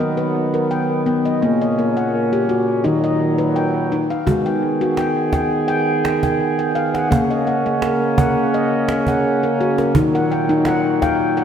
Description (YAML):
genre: world meditative, meditative tuned percussion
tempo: 84 BPM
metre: 4/4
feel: straight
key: unclear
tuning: A4 = 440 Hz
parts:
  - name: warm brass ensemble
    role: sustained chords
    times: 0.0-11.4 s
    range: Bb2 to Ab4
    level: -19 LUFS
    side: right 2 dB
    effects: none
  - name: handpan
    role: arpeggios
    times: 0.0-11.4 s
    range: Eb3 to G5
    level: -19 LUFS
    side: left 2 dB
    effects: analog delay
  - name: cajon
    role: percussion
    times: 4.3-11.3 s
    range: none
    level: -22 LUFS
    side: right 3 dB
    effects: none
room: wet lush hall reverb, RT60 2.9 s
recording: dreamy mix soaked in reverb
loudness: -16 LUFS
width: side -8 dB against mid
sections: 0.0-4.3 A section; 4.3-11.4 B section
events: none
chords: 0.0 B; 1.4 Bbm; 2.8 Ebm; 4.3 Abm; 7.1 Bbm; 10.0 Ebm